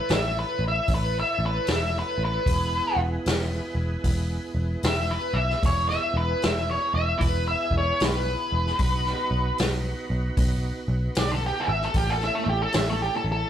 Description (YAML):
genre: blues rock power trio and southern rock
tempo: 76 BPM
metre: 4/4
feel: swing 63% on 8ths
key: E major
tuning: A4 = 444 Hz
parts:
  - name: octave-fuzz lead guitar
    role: melody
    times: 0.0-13.5 s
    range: G4 to E5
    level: -26 LUFS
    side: equal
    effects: distortion
  - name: overdriven tonewheel organ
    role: sustained chords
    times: 0.0-13.5 s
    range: A3 to C#5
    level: -35 LUFS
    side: right 2 dB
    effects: chorus vibrato, slow rotary speaker
  - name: vintage muted picked electric bass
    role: bass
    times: 0.1-13.4 s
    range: E1 to B1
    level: -27 LUFS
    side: equal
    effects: none
  - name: vintage drum kit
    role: drums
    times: 0.1-13.0 s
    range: hi-hat, kick drum, snare drum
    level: -27 LUFS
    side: equal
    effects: none
room: moderate stone room reverb, RT60 1.2 s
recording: rough rehearsal-room recording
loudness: -22 LUFS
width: side -10 dB against mid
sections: 0.0-13.5 A section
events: lead electric guitar solo 0.0-13.5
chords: 0.0 A; 2.5 E; 8.8 B; 11.9 A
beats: 0.09 0.88 1.67 | 2.47 3.26 4.05 4.84 | 5.63 6.42 7.21 8.00 | 8.79 9.58 10.37 11.16 | 11.95 12.74